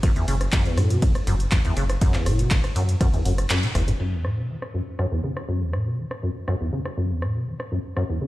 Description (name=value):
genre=acid house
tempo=121 BPM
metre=4/4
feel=straight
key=F# minor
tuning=A4 = 440 Hz
part: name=deep acid bass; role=riff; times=0.0-8.3 s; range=E2 to E3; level=-24 LUFS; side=equal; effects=lush chorus, sidechain pumping, ping-pong delay
part: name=electronic kick drum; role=drums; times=0.0-3.1 s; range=none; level=-21 LUFS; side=equal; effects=none
part: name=punchy analog drum machine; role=drums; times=0.0-8.1 s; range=crash cymbal, handclaps, hi-hat, ride cymbal, rim click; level=-30 LUFS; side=equal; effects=low-pass filter on hats, low-pass filter on cymbals, low-pass filter on snare
part: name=round analog bass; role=bass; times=0.3-3.9 s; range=F#1 to F#2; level=-23 LUFS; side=equal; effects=sidechain pumping
room=light reverb, digital ambience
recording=played on a big sound system in a bare room, stone room reverb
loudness=-21 LUFS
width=side -17 dB against mid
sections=0.0-4.0 A section; 4.0-8.3 B section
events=drop 0.0-4.0; kick drops out 3.5-4.0; band accent 3.5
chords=0.0 N.C.; 4.0 F#m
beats=| 0.03 0.53 1.02 1.52 | 2.02 2.51 3.01 3.50 | 4.00 4.50 4.99 5.49 | 5.98 6.48 6.97 7.47 | 7.97